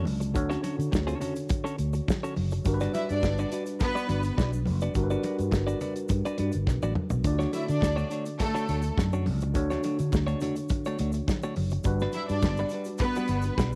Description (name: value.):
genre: disco.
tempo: 104 BPM.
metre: 4/4.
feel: straight.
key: D major.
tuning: A4 = 442 Hz.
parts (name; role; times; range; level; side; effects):
clean electric guitar; accompaniment; 0.0-13.8 s; G3 to D5; -37 LUFS; equal; none.
tine electric piano; accompaniment; 0.0-13.8 s; D3 to D5; -36 LUFS; equal; lush chorus.
fingered electric bass; bass; 0.0-13.8 s; F#1 to D3; -31 LUFS; equal; transformer saturation.
damped 70s drum kit; drums; 0.1-13.7 s; hi-hat, kick drum, snare drum, toms; -32 LUFS; equal; none.
congas; percussion; 0.1-13.7 s; none; -40 LUFS; equal; none.
egg shaker; percussion; 0.2-13.8 s; none; -54 LUFS; equal; none.
rich studio string section; second line; 2.9-13.5 s; A3 to E5; -34 LUFS; equal; none.
room: studio ambience.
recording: none.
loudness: -28 LUFS.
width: mono.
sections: 0.0-13.8 A section.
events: drum fill 6.7-7.3.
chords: 0.0 Dmaj7; 2.7 Gmaj7; 7.3 Dmaj7; 11.9 Gmaj7.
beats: | 0.35 0.93 1.50 2.08 | 2.66 3.23 3.81 4.38 | 4.96 5.53 6.11 6.68 | 7.26 7.83 8.41 8.98 | 9.55 10.13 10.70 11.28 | 11.85 12.43 13.00 13.58.